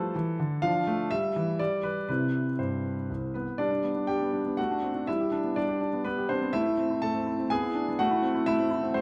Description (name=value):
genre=classical-period piano sonatina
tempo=123 BPM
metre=3/4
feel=straight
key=C major, G major from 3.6 s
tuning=A4 = 440 Hz
part: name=clear grand piano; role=solo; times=0.0-9.0 s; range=C2 to A5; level=-28 LUFS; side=equal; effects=none
room=wet recital hall reverb, RT60 1.4 s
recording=none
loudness=-28 LUFS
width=mono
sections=0.0-3.6 A section; 3.6-9.0 B section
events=none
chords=0.0 A5; 0.6 Dm/F; 1.1 Em; 1.6 N.C.; 2.1 C; 3.6 G; 4.6 D7/A; 5.1 G; 6.5 Am; 7.5 E7/B; 8.0 Am